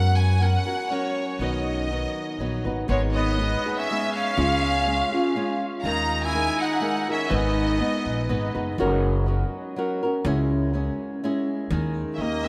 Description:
mexican folk, mariachi; 122 BPM; 3/4; straight; G# minor; A4 = 441 Hz
clear studio violin section; melody; 0.0-8.6, 12.1-12.5 s; C#5 to A#5; -30 LUFS; equal
flamenco guitar; accompaniment; 0.0-12.5 s; G#2 to B4; -29 LUFS; equal
upright bass; bass; 0.0-12.5 s; F#1 to F#2; -27 LUFS; equal
warm trumpet; second line; 2.9-8.6, 12.1-12.5 s; G#3 to E4; -34 LUFS; equal
wet cathedral reverb, RT60 6.4 s; in a vast, echoing space; -24 LUFS; mono
0.0-2.9 A section; 2.9-12.5 B section
0.0 F#; 1.4 B; 2.9 G#m; 4.4 C#; 5.8 D#sus4; 7.3 G#m; 8.8 F#; 10.3 C#m; 11.7 D#sus4
0.41 0.90 | 1.40 1.89 2.39 | 2.89 3.38 3.88 | 4.37 4.86 5.35 | 5.84 6.33 6.82 | 7.30 7.79 8.29 | 8.78 9.28 9.77 | 10.25 10.74 11.22 | 11.71 12.19

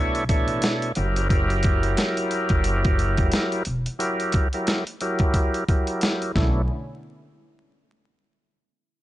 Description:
hip hop, boom-bap hip-hop; 89 BPM; 4/4; swing 59% on 16ths; A4 = 441 Hz
overdriven tonewheel organ; accompaniment; 0.0-6.6 s; B2 to C#5; -24 LUFS; equal; slow rotary speaker, cassette tape, low-pass filter
upright bass; bass; 0.0-6.7 s; E1 to B1; -25 LUFS; equal; tube saturation
dusty soul sampler-style drum kit; drums; 0.1-6.5 s; hi-hat, kick drum, snare drum; -23 LUFS; equal
warm studio string section; sustained chords; 6.4-6.7 s; D3 to E4; -34 LUFS; equal; low-pass filter
small room reverb; dry, gritty hardware recording, transformer saturation, vinyl crackle, nothing above 10.3 kHz; -20 LUFS; side -14 dB against mid
0.0-6.7 A section; 6.7-9.0 B section
filter sweep 0.0-6.7
0.0 Bm11; 1.0 F#7b9; 6.4 Bm11; 6.7 N.C.
0.63 | 1.30 1.98 2.65 3.32 | 4.00 4.67 5.35 6.02

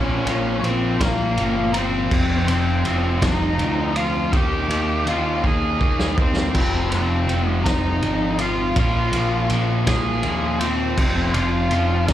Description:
quiet-loud alternative rock; 54 BPM (dotted quarters); 6/8; straight; F minor; A4 = 435 Hz
octave-fuzz lead guitar; melody; 0.0-12.1 s; Bb3 to Ab5; -24 LUFS; equal; distortion, plate reverb, slapback echo
distorted electric guitar; riff; 0.0-12.1 s; F2 to Eb4; -28 LUFS; right 9 dB; distortion, slapback echo
thick fuzz guitar; riff; 0.0-12.1 s; F2 to Eb4; -26 LUFS; left 11 dB; distortion, slapback echo
growling picked electric bass; bass; 0.0-12.1 s; F1 to Eb2; -23 LUFS; equal; overdrive
loose indie drum kit; drums; 0.3-12.1 s; crash cymbal, kick drum, ride cymbal, snare drum; -24 LUFS; equal
light reverb; live gig heard through the venue's PA, club reverb; -18 LUFS; side -12 dB against mid
0.0-12.1 A section
drum fill 5.4-6.5
0.0 Bbmadd9; 2.1 F5; 4.3 Ebsus2; 6.5 Fm; 8.8 Bbsus2; 11.0 F5
1.00 | 2.11 3.22 | 4.33 5.44 | 6.55 7.66 | 8.76 9.87 | 10.98 12.08

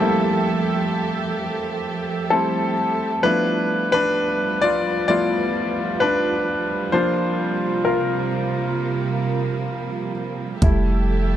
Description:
contemporary R&B; 65 BPM; 4/4; straight; F major; A4 = 440 Hz
clear concert grand piano; accompaniment; 0.0-11.4 s; F3 to D5; -20 LUFS; left 2 dB
warm studio string section; sustained chords; 0.0-11.4 s; C3 to E5; -25 LUFS; right 4 dB
clean 808-style bass; bass; 10.6-11.4 s; F1; -19 LUFS; equal
smooth R&B drum kit; drums; 10.6-10.8 s; hi-hat, kick drum; -19 LUFS; right 1 dB
moderate spring reverb, RT60 2.4 s; -19 LUFS; side -11 dB against mid
0.0-11.4 A section
grand piano solo 0.0-11.4
0.0 Fmaj9; 3.2 G13; 6.9 C7sus4; 10.6 Fmaj9
0.47 1.39 2.31 | 3.23 4.16 5.08 6.00 | 6.93 7.85 8.77 9.70 | 10.62

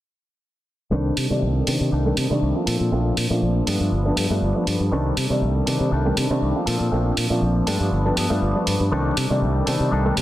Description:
filtered disco house; 120 BPM; 4/4; swing 53% on 16ths; C dorian; A4 = 440 Hz
warm grand piano; accompaniment; 0.9-10.2 s; Eb3 to D5; -23 LUFS; equal; phaser, low-pass filter
electric guitar with an envelope filter; riff; 0.9-10.2 s; F3 to A4; -29 LUFS; left 3 dB; vintage 12-bit sampler grit, low-pass filter
modern bright fingered electric bass; bass; 0.9-10.2 s; G1 to C3; -22 LUFS; equal; low-pass filter
electronic hi-hat; drums; 1.2-10.2 s; -27 LUFS; right 2 dB
light reverb, digital ambience; dense, heavily limited modern master; -19 LUFS; side -14 dB against mid
0.9-10.2 A section
filter sweep 0.9-10.2
0.9 Cm69; 2.7 Bbmaj9; 3.7 G9; 4.9 Cm69; 6.7 Bbmaj9; 7.7 G9; 8.9 Cm69
| 0.92 1.42 1.92 2.42 | 2.92 3.42 3.92 4.42 | 4.92 5.42 5.92 6.42 | 6.92 7.42 7.92 8.42 | 8.92 9.42 9.92

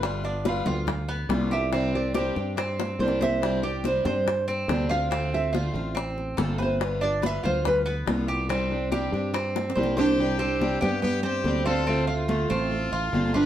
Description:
latin, Cuban son and guajira; 142 BPM; 4/4; straight; A4 = 440 Hz
picked plugged-in steel-string acoustic guitar; accompaniment; 0.0-13.5 s; C3 to G4; -31 LUFS; left 1 dB
Cuban tres; arpeggios; 0.0-13.5 s; B3 to C5; -30 LUFS; right 2 dB
sustaining fretless electric bass; bass; 0.0-13.5 s; G1 to G2; -29 LUFS; equal
bongos; percussion; 0.0-10.1 s; -32 LUFS; left 4 dB
congas; percussion; 0.0-13.5 s; -32 LUFS; left 1 dB
nylon-string guitar; melody; 0.5-13.5 s; A3 to G5; -28 LUFS; right 2 dB
brilliant trumpet; second line; 10.0-13.5 s; F4 to B4; -31 LUFS; left 3 dB
wet studio reverb, RT60 0.7 s; band playing live in one room; -23 LUFS; side -11 dB against mid
0.0-10.2 A section; 10.2-13.5 B section
nylon-string guitar solo 0.0-10.2; drum fill 2.8-3.4, 9.6-10.2
0.0 G7; 1.7 Csus2; 5.1 Dm7; 6.8 G7; 8.5 Csus2; 11.9 Dm7
| 0.04 0.46 0.88 1.31 | 1.73 2.15 2.58 3.00 | 3.42 3.85 4.27 4.69 | 5.12 5.54 5.96 6.39 | 6.81 7.23 7.65 8.08 | 8.50 8.92 9.34 9.77 | 10.19 10.61 11.03 11.46 | 11.88 12.30 12.72 13.14

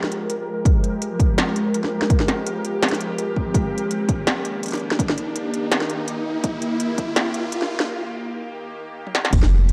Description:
half-time drum and bass; 166 BPM; 4/4; swing 55% on 16ths, half-time; A4 = 445 Hz
bowed-like drone; sustained chords; 0.0-9.7 s; Eb3 to G4; -29 LUFS; equal; built-in reverb, phaser, sidechain pumping
industrial drum kit; drums; 0.0-9.7 s; crash cymbal, hi-hat, snare drum, toms; -26 LUFS; equal
riser and impact; sound effects; 0.8-9.7 s; -33 LUFS; equal
pulsing gated texture; texture; 0.0-7.9 s; Bb4; -35 LUFS; equal; chorus, built-in reverb
electronic kick drum; drums; 0.7-7.1, 9.3-9.4 s; -21 LUFS; equal
saturated sub bass; bass; 9.3-9.7 s; F1; -18 LUFS; equal
moderate lush hall reverb, RT60 2.1 s; dark, warm production, high-pass filter; -22 LUFS; mono
0.0-9.3 A section
build-up 0.0-9.3; filter sweep 0.0-9.3; riser 0.8-7.9; break 7.9-9.3; drum fill 9.1; impact 9.3-9.7
0.0 Fmadd9; 3.5 Eb
0.29 | 0.66 1.02 1.38 1.74 | 2.10 2.46 2.82 3.19 | 3.55 3.91 4.27 4.63 | 4.99 5.35 5.72 6.08 | 6.44 6.80 7.16 7.52 | 7.88 8.25 8.61 8.97 | 9.33 9.69

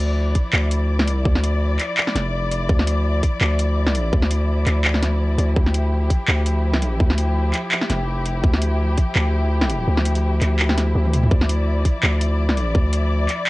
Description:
half-time drum and bass; 167 BPM; 4/4; swing 54% on 16ths, half-time; D minor; A4 = 440 Hz
muted studio string section; sustained chords; 0.0-13.5 s; F3 to D5; -26 LUFS; left 2 dB; sidechain pumping, cassette tape
long sustained 808-style bass; bass; 0.0-13.3 s; F1 to D2; -19 LUFS; equal
drum and bass drum kit; drums; 0.4-13.5 s; handclaps, hi-hat, snare drum, toms; -22 LUFS; equal; cassette tape
electronic kick drum; drums; 0.4-9.1, 11.3-12.8 s; -18 LUFS; equal; cassette tape
light reverb; home recording on cassette; -17 LUFS; side -20 dB against mid
0.0-13.5 A section
kick drops out 9.9-11.3; drum fill 11.0
0.0 Dmadd9
0.17 0.53 0.89 | 1.25 1.61 1.97 2.33 | 2.69 3.05 3.41 3.77 | 4.13 4.49 4.84 5.20 | 5.56 5.92 6.28 6.64 | 7.00 7.36 7.72 8.08 | 8.44 8.80 9.16 9.52 | 9.88 10.23 10.59 10.95 | 11.31 11.67 12.03 12.39 | 12.75 13.11 13.47

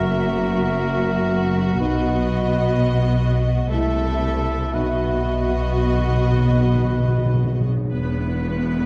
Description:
classical, slow romantic movement for symphony orchestra; 55-66 BPM; 3/4; rubato; A4 = 438 Hz
rich symphonic violin section; melody; 0.0-7.7 s; D#5 to E5; -35 LUFS; equal
mellow hollow small flute group; second line; 0.0-7.6 s; D#5 to E5; -31 LUFS; equal
mellow oboe; second line; 0.0-7.6 s; A4 to B4; -33 LUFS; equal
warm clarinet; second line; 0.0-7.6 s; E4 to F#4; -32 LUFS; equal
warm symphonic violin section; second line; 0.0-7.7 s; F#4 to A4; -33 LUFS; equal
rich symphonic viola section; accompaniment; 0.0-8.9 s; A3 to B4; -31 LUFS; equal
clear symphonic double bass section; bass; 0.0-8.9 s; E1 to C2; -27 LUFS; equal
rich symphonic cello section; bass; 0.0-8.9 s; E2 to C3; -26 LUFS; equal
dark French horn section; sustained chords; 1.8-5.1 s; F#3 to E4; -31 LUFS; equal
timpani; percussion; 4.7-7.9 s; B2; -27 LUFS; equal
wet scoring stage reverb, RT60 2.2 s; dark, warm production; -20 LUFS; mono
0.0-7.9 A section
timpani fill 4.7-7.9
0.0 F#7; 1.8 B; 3.7 Am/C; 4.7 B; 7.9 E5
0.86 | 1.79 2.72 3.70 | 4.74 5.80 6.87 | 7.92

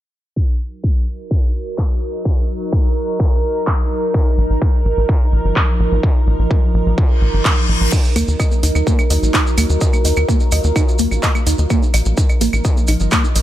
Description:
melodic techno; 127 BPM; 4/4; straight; Eb minor; A4 = 440 Hz
evolving wavetable pad; sustained chords; 1.2-13.4 s; F3 to Bb4; -22 LUFS; right 2 dB; chorus, built-in reverb, sidechain pumping
electronic kick drum; drums; 0.4-13.2 s; -16 LUFS; equal; distortion, overdrive
techno drum kit; drums; 1.8-13.4 s; claves, crash cymbal, handclaps, hi-hat; -22 LUFS; right 1 dB; overdrive
tight sequencer bass; bass; 4.4-13.4 s; Ab1 to Eb2; -16 LUFS; equal; sidechain pumping
reverse cymbal; sound effects; 7.1-7.9 s; -24 LUFS; left 4 dB
tight sequenced synth; arpeggios; 7.9-13.4 s; Bb3 to Eb5; -23 LUFS; right 1 dB; chorus, phaser, sidechain pumping, tape echo
maracas; percussion; 7.9-13.4 s; -27 LUFS; right 2 dB
little or no reverb; low-pass filter; -14 LUFS; side -13 dB against mid
0.4-7.9 A section; 7.9-13.4 B section
filter sweep 0.4-7.9; reverse cymbal 7.1-7.9
0.4 Ebm; 4.1 Bbsus4; 7.9 Ebm; 11.7 Bbsus4
| 0.36 0.84 1.31 1.78 | 2.25 2.73 3.20 3.67 | 4.14 4.62 5.09 5.56 | 6.03 6.51 6.98 7.45 | 7.92 8.40 8.87 9.34 | 9.81 10.29 10.76 11.23 | 11.70 12.18 12.65 13.12

